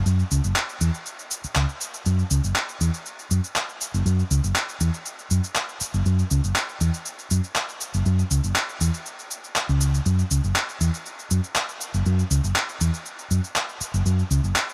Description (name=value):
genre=filtered disco house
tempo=120 BPM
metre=4/4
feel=swing 53% on 16ths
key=unclear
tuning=A4 = 440 Hz
part: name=hollow-body short-scale fingered electric bass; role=bass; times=0.1-14.5 s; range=F#1 to F#2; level=-23 LUFS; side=equal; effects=low-pass filter
part: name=electronic shaker and handclaps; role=drums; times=0.1-14.7 s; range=none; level=-29 LUFS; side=equal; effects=none
room=light reverb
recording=none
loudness=-24 LUFS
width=mono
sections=0.0-14.7 A section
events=filter sweep on fingered electric bass 0.0-14.7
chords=none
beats=| 0.06 0.56 1.06 1.56 | 2.06 2.56 3.06 3.56 | 4.06 4.56 5.06 5.56 | 6.06 6.56 7.06 7.56 | 8.06 8.56 9.06 9.56 | 10.06 10.56 11.06 11.56 | 12.06 12.56 13.06 13.56 | 14.06 14.56